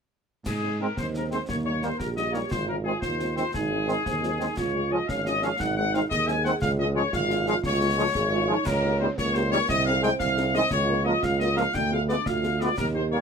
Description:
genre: military-style march for wind band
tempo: 117 BPM (dotted quarters)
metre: 6/8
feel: straight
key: Ab major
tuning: A4 = 444 Hz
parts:
  - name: clear trumpet section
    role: melody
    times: 0.5-13.2 s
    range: Ab4 to Ab5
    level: -27 LUFS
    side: left 3 dB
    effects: none
  - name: warm tuba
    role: bass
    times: 0.5-13.2 s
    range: Ab1 to Ab2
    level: -28 LUFS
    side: right 2 dB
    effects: none
  - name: concert snare drum, clash cymbals and concert bass drum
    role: drums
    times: 0.5-12.9 s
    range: none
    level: -36 LUFS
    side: left 1 dB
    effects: none
  - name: dark French horn section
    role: accompaniment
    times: 0.6-13.2 s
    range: G3 to Bb4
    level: -32 LUFS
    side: left 4 dB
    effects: none
  - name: clear trombone section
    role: sustained chords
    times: 0.8-13.2 s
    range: Eb3 to Db4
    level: -31 LUFS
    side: right 2 dB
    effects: none
  - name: mellow euphonium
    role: second line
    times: 1.0-13.2 s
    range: Bb3 to Ab4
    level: -31 LUFS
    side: right 5 dB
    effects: none
room: little or no reverb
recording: close, detailed microphones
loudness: -23 LUFS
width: side -6 dB against mid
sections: 0.5-13.2 A section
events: none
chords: 0.5 Ab; 1.5 Eb; 2.5 Ab; 4.6 Db; 5.6 Ab; 6.6 Db; 8.7 Eb7/Db; 9.7 Ab/C; 10.7 Bbm/Db; 11.7 Ddim7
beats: | 0.46 0.97 | 1.49 2.00 | 2.51 3.03 | 3.54 4.05 | 4.57 5.08 | 5.59 6.11 | 6.62 7.13 | 7.64 8.16 | 8.67 9.18 | 9.70 10.21 | 10.72 11.24 | 11.75 12.26 | 12.77

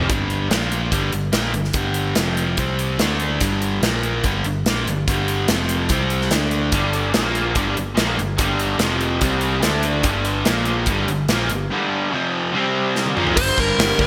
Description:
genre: hard rock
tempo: 144 BPM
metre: 4/4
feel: straight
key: G minor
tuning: A4 = 440 Hz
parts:
  - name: overdriven electric guitar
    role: riff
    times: 0.0-14.1 s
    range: F2 to D4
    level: -24 LUFS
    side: equal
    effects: none
  - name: raw garage guitar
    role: riff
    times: 0.0-0.1, 6.7-13.4 s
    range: F2 to D4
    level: -26 LUFS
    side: equal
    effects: overdrive, analog chorus
  - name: picked electric bass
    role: bass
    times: 0.0-14.1 s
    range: F1 to D2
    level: -27 LUFS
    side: equal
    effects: none
  - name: big rock drum kit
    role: drums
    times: 0.1-14.1 s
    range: crash cymbal, hi-hat, kick drum, snare drum, toms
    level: -25 LUFS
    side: equal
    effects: gated reverb
  - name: dark smooth lead guitar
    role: melody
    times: 13.4-14.1 s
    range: Bb4 to C5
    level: -21 LUFS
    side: equal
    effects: overdrive
room: moderate plate reverb, RT60 2.1 s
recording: bright 1980s-style digital production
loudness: -20 LUFS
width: mono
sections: 0.1-13.4 A section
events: drum fill 13.0-13.4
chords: 0.1 G5; 0.5 Bb5; 0.9 Gm; 2.2 F5; 2.6 C5; 3.0 D5; 3.4 G5; 3.8 Bb5; 4.2 Gm; 5.5 F5; 5.9 C5; 6.3 D5; 6.7 G5; 7.1 Bb5; 7.6 Gm; 8.8 F5; 9.2 C5; 9.6 D5; 10.1 G5; 10.5 Bb5; 10.9 Gm; 12.1 F5; 12.5 C5; 13.2 Bb5; 13.4 Gm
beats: | 0.09 0.50 0.92 1.33 | 1.75 2.16 2.58 2.99 | 3.41 3.83 4.24 4.66 | 5.07 5.49 5.90 6.32 | 6.73 7.15 7.56 7.98 | 8.39 8.81 9.22 9.64 | 10.05 10.47 10.88 11.30 | 11.71 12.13 12.54 12.95 | 13.36 13.78

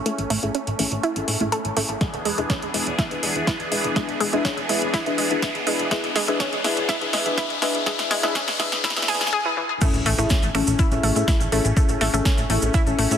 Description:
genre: progressive house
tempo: 123 BPM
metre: 4/4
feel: straight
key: A major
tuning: A4 = 441 Hz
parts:
  - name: filtered supersaw swell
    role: sustained chords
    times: 0.0-13.2 s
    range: E3 to G#4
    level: -30 LUFS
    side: right 1 dB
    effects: phaser, sidechain pumping
  - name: riser and impact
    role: sound effects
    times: 0.2-11.8 s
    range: none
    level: -31 LUFS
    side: left 2 dB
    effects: none
  - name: analog pluck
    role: arpeggios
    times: 0.1-13.0 s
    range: A2 to A4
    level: -26 LUFS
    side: equal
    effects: chorus, sidechain pumping, digital delay
  - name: deep mellow chord stab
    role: stabs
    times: 0.1-13.2 s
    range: C#4 to G#5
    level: -26 LUFS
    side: left 3 dB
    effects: chorus, sidechain pumping, digital delay
  - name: deep house drum kit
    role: drums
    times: 0.1-13.2 s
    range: crash cymbal, finger snaps, hi-hat, snare drum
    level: -26 LUFS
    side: right 1 dB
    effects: overdrive, sidechain pumping on hats, small room ambience, sidechain pumping on cymbals
  - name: plucky analog bass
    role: bass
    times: 0.2-13.2 s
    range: E1 to A2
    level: -27 LUFS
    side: equal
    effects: sidechain pumping
  - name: electronic kick drum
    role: drums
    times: 2.0-12.8 s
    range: none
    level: -22 LUFS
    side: equal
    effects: overdrive, small room ambience
  - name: cabasa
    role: percussion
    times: 9.8-13.2 s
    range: none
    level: -32 LUFS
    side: right 3 dB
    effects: none
room: moderate lush hall reverb, RT60 1.7 s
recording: dense, heavily limited modern master, high-pass filter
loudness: -19 LUFS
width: side -8 dB against mid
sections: 0.0-9.8 A section; 9.8-13.2 B section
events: build-up 0.0-9.8; filter sweep on synth arpeggio sound 0.0-9.8; filter sweep on synth stab 0.0-9.8; filter sweep 0.0-9.8; riser 0.2-9.3; drum fill 2.0-9.3; drop 9.8-13.2; impact 9.8-11.8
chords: 0.0 Amaj7; 2.0 E7; 9.8 Amaj7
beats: | 0.06 0.55 1.03 1.52 | 2.01 2.50 2.99 3.47 | 3.96 4.45 4.94 5.42 | 5.91 6.40 6.89 7.38 | 7.86 8.35 8.84 9.33 | 9.81 10.30 10.79 11.28 | 11.77 12.25 12.74

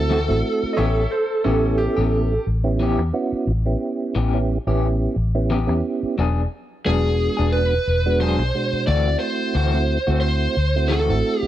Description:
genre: blues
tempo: 89 BPM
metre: 4/4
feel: swing 55% on 16ths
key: unclear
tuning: A4 = 440 Hz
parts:
  - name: lead guitar through a small cranked amp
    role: melody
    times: 0.0-2.4, 6.9-11.5 s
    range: G#4 to D5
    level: -22 LUFS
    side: right 1 dB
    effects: overdrive
  - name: percussive tonewheel organ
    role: accompaniment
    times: 0.0-11.5 s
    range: B2 to G4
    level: -24 LUFS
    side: right 4 dB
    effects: chorus vibrato, slow rotary speaker
  - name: vintage muted fingered electric bass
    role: bass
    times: 0.0-11.5 s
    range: E1 to E2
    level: -21 LUFS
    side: equal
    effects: none
  - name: electric guitar through a small old amp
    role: stabs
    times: 0.1-11.1 s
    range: E3 to G#4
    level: -26 LUFS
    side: left 5 dB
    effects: tremolo
  - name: bright upright piano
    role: second line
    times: 0.7-2.4 s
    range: C#4 to E5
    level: -28 LUFS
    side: right 2 dB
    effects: none
room: little or no reverb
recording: dry, close 1970s-style studio recording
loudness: -18 LUFS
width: side -12 dB against mid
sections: 0.0-11.5 A section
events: none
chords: 0.0 D9; 0.8 A9; 6.2 E9; 8.9 D9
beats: 0.10 | 0.78 1.45 2.13 2.80 | 3.48 4.15 4.83 5.50 | 6.18 6.85 7.53 8.20 | 8.88 9.55 10.23 10.90

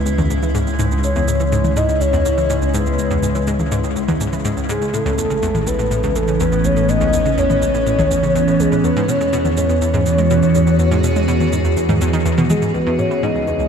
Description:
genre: ambient, sequencer-driven space music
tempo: 123 BPM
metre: 4/4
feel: straight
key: C# minor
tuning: A4 = 440 Hz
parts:
  - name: soft octave-layered synth lead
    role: melody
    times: 0.0-13.7 s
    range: G#4 to D#5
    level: -21 LUFS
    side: left 2 dB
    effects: chorus, tremolo, shimmer reverb, ping-pong delay
  - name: evolving wavetable pad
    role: sustained chords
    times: 0.0-13.7 s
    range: A2 to G#4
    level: -19 LUFS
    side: right 1 dB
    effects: phaser, built-in reverb
  - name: analog pluck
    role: riff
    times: 0.0-13.7 s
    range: C#2 to G#3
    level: -21 LUFS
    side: equal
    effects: chorus, ping-pong delay
  - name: warm sub bass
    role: bass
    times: 0.0-13.7 s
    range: A1 to E2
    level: -22 LUFS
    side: equal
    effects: tube saturation
  - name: electronic cabasa and toms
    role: percussion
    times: 0.1-13.7 s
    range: none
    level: -26 LUFS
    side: left 1 dB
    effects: ping-pong delay
  - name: twinkling granular texture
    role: texture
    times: 13.2-13.7 s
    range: C#4 to C#5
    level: -47 LUFS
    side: left 3 dB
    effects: none
room: wet huge ambient reverb, RT60 8.3 s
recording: none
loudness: -14 LUFS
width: side -7 dB against mid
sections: 0.0-12.7 A section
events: none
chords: 0.0 C#m7; 4.9 A; 8.8 E6; 12.7 C#m7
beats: 0.06 0.55 | 1.04 1.52 2.01 2.50 | 2.99 3.48 3.96 4.45 | 4.94 5.43 5.91 6.40 | 6.89 7.38 7.87 8.35 | 8.84 9.33 9.82 10.30 | 10.79 11.28 11.77 12.26 | 12.74 13.23

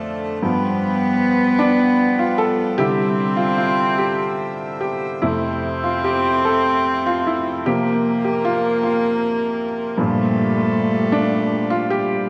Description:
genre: celtic folk, Celtic slow air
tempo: 51 BPM (dotted quarters)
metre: 6/8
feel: uneven beats, rubato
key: unclear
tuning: A4 = 440 Hz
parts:
  - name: warm cello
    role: second line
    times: 0.0-12.3 s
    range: A3 to C4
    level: -23 LUFS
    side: equal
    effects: none
  - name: felt-muted upright piano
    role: accompaniment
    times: 0.0-12.3 s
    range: F2 to A4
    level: -22 LUFS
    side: equal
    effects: none
  - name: hand-pumped harmonium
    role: sustained chords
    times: 0.0-12.3 s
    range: Bb2 to E5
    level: -31 LUFS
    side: equal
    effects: none
room: wet recital hall reverb, RT60 1.6 s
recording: none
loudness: -19 LUFS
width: mono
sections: 0.0-12.3 A section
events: felt piano solo 0.0-12.3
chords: 0.4 G7; 2.8 Cadd9; 5.2 F; 7.7 C7sus4; 10.0 Gm7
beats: | 0.43 1.61 | 2.80 4.00 | 5.24 6.46 | 7.67 8.84 | 9.98 11.13 | 12.29

